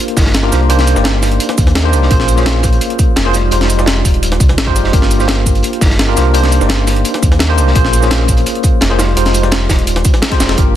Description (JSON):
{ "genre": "liquid drum and bass", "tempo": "170 BPM", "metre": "4/4", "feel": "straight", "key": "unclear", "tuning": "A4 = 440 Hz", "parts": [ { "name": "tine electric piano", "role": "accompaniment", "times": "0.0-10.8 s", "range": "Ab3 to D5", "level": "-16 LUFS", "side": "equal", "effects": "overdrive, fast stereo tremolo, digital delay" }, { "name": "breakbeat sampler-style drum kit", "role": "drums", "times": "0.1-10.7 s", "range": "hi-hat, shaker, snare drum", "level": "-18 LUFS", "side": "equal", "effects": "none" }, { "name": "sub bass with octave", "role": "bass", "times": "0.2-10.8 s", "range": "Eb1 to Eb2", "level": "-14 LUFS", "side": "equal", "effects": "none" }, { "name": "crunchy breakbeat drum kit", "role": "drums", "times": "0.2-10.7 s", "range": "hi-hat, snare drum", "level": "-22 LUFS", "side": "equal", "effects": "high-pass filter on hats, high-pass filter on snare, high-pass filter on room" }, { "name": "electronic kick drum", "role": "drums", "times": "0.2-10.7 s", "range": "none", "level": "-13 LUFS", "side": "equal", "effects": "none" } ], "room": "little or no reverb", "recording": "dense, heavily limited modern master", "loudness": "-9 LUFS", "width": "side -12 dB against mid", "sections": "0.0-10.6 A section", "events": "drop 0.0-10.6; drum fill 10.3", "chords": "0.0 Gm7; 0.7 Cm7; 2.1 Bbm7; 3.3 Fm7; 4.9 Gm7; 6.3 Cm7; 7.8 Bbm7; 9.0 Fm7" }